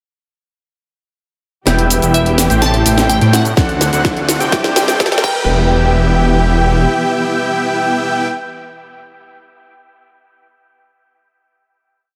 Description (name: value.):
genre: EDM, festival progressive house.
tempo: 126 BPM.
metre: 4/4.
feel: straight.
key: E minor.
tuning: A4 = 440 Hz.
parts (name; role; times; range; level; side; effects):
picked old ladder-braced acoustic guitar; accompaniment; 1.7-8.3 s; A2 to C5; -26 LUFS; equal; none.
dark chamber string section; sustained chords; 1.7-8.3 s; C3 to G4; -26 LUFS; equal; none.
unison lead; arpeggios; 1.7-8.3 s; F#5 to G5; -22 LUFS; equal; sidechain pumping, dub echo.
dense compressed supersaw; riff; 1.7-8.3 s; A3 to G5; -21 LUFS; equal; sidechain pumping, low-pass filter, dub echo.
detuned saw bass; bass; 1.7-6.9 s; E1 to A2; -17 LUFS; equal; sidechain pumping.
house drum kit; drums; 1.7-5.3 s; cabasa, crash cymbal, hi-hat, snare drum; -19 LUFS; equal; none.
riser; sound effects; 3.5-5.5 s; none; -28 LUFS; equal; none.
glassy wavetable pluck; melody; 2.1-8.3 s; E5 to A5; -25 LUFS; equal; chorus, dub echo.
electronic kick drum; drums; 3.6-5.3 s; none; -20 LUFS; equal; none.
room: light reverb.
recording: high-pass filter.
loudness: -14 LUFS.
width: mono.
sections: 1.7-5.5 build; 5.5-9.3 final hit.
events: build-up 1.7-5.5; drum fill 1.7-5.5; filter sweep on supersaw synth 1.7-5.5.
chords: 1.7 Em; 2.6 Am7; 3.6 D7; 4.5 Csus2; 5.2 Em.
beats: | 1.67 2.14 2.62 3.10 | 3.57 4.05 4.52 5.00 | 5.48 5.95 6.43 6.91 | 7.38 7.86.